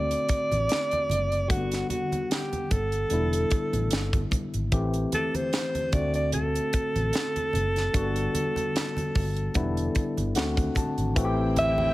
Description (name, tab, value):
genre	lush 1970s-style soul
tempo	74 BPM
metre	4/4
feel	swing 54% on 16ths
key	A dorian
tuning	A4 = 441 Hz
part	warm alto saxophone	melody	0.0-11.9 s	F#4 to E5	-28 LUFS	right 1 dB	none
part	barky tine electric piano	accompaniment	0.0-11.9 s	D3 to A5	-30 LUFS	left 2 dB	overdrive
part	vintage muted fingered electric bass	bass	0.0-11.9 s	E1 to D2	-29 LUFS	equal	none
part	tight funk drum kit	drums	0.1-11.8 s	hi-hat, kick drum, snare drum	-28 LUFS	equal	none
part	congas	percussion	0.3-11.9 s	none	-36 LUFS	right 2 dB	none
part	warm studio string section	second line	11.2-11.9 s	C4 to G5	-34 LUFS	left 1 dB	none
room	light reverb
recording	none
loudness	-24 LUFS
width	side -17 dB against mid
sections	0.0-11.2 A section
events	tine electric piano fill 10.0-11.2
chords	0.0 D7; 1.5 Gmaj7; 3.1 Em7; 4.7 Am7; 5.9 D7; 7.9 Gmaj7; 9.6 Em7; 10.4 D7; 11.2 Am7